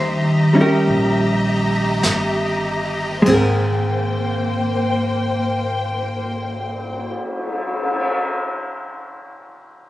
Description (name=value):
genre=jazz ballad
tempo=47-59 BPM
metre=4/4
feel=swing 67% on 8ths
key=Ab major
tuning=A4 = 438 Hz
part: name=hollow-body jazz guitar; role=accompaniment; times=0.0-7.2 s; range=Eb3 to C5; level=-18 LUFS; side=equal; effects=none
part: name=warm symphonic string section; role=sustained chords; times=0.0-7.1 s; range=Bb3 to Bb5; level=-22 LUFS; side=left 1 dB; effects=none
part: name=upright bass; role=bass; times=0.0-7.1 s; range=G1 to Eb2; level=-23 LUFS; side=equal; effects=none
part: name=jazz brush drum kit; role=drums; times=0.9-8.0 s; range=brushed snare drum, crash cymbal, cymbal swell, hi-hat, kick drum, snare drum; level=-26 LUFS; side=left 1 dB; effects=none
room=light reverb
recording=recorded on a phone in the room, studio ambience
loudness=-17 LUFS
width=side -15 dB against mid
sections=0.0-3.3 A section; 3.3-8.3 B section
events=slowing down 0.0-3.3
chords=0.0 Eb7b9; 3.3 Abmaj9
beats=0.89 2.03 | 3.26 4.51 5.76 7.01